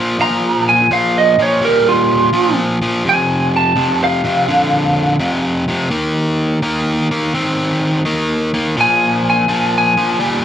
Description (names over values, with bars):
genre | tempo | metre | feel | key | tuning
blues | 84 BPM | 4/4 | swing 68% on 8ths | unclear | A4 = 441 Hz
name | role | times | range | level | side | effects
cranked stack guitar | riff | 0.0-10.4 s | F2 to C4 | -15 LUFS | equal | overdrive
lightly driven lead guitar | melody | 0.2-10.4 s | F4 to Bb5 | -14 LUFS | right 2 dB | plate reverb
room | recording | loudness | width
moderate studio reverb, RT60 0.5 s | lossy compression artefacts | -12 LUFS | side -10 dB against mid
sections
0.0-10.4 A section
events
lead electric guitar solo 0.0-10.4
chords
0.0 Bb5; 3.1 F5; 5.9 Eb5; 8.8 Bb5